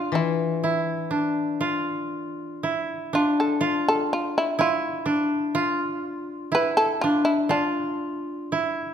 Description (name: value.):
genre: japanese traditional, Japanese chamber music.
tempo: 60 BPM.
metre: 2/4.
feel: rubato.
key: D minor.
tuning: A4 = 439 Hz.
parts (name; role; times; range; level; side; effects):
shamisen; melody; 0.0-8.9 s; D4 to B4; -24 LUFS; equal; none.
koto; second line; 0.0-8.9 s; D4 to F4; -24 LUFS; right 1 dB; none.
koto; accompaniment; 0.1-3.1 s; E3; -28 LUFS; left 7 dB; none.
room: moderate concert hall reverb, RT60 1.8 s.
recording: minimal, uncompressed stereo recording.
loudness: -22 LUFS.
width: side -8 dB against mid.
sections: 0.0-8.9 A section.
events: none.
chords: none.